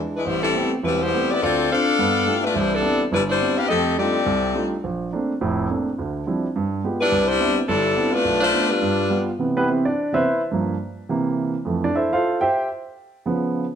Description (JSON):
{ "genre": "jazz", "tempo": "211 BPM", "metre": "4/4", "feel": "swing 62% on 8ths", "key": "A minor, C major from 9.4 s", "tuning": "A4 = 440 Hz", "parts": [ { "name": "warm baby grand piano", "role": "accompaniment", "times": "0.0-13.6 s", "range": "E1 to G5", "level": "-22 LUFS", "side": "right 2 dB", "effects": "none" }, { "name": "clear saxophone section", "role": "melody", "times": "0.2-4.7, 7.0-9.3 s", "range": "G3 to F5", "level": "-19 LUFS", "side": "left 3 dB", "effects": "none" } ], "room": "wet large studio reverb, RT60 1.1 s", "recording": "none", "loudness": "-19 LUFS", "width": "side -8 dB against mid", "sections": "0.3-9.4 A section; 9.4-13.8 B section", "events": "grand piano solo 9.4-13.8", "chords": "0.3 Am9; 1.4 Dm7; 2.0 G13; 2.6 Cmaj9; 3.7 F13; 4.8 Bbmaj9; 6.0 Dm11; 6.5 G7b9; 7.1 Cmaj9; 8.3 Bm7b5; 8.8 G7; 9.4 Cmaj7; 10.5 Gm7; 11.1 C7; 11.7 Fmaj9; 12.8 Db7" }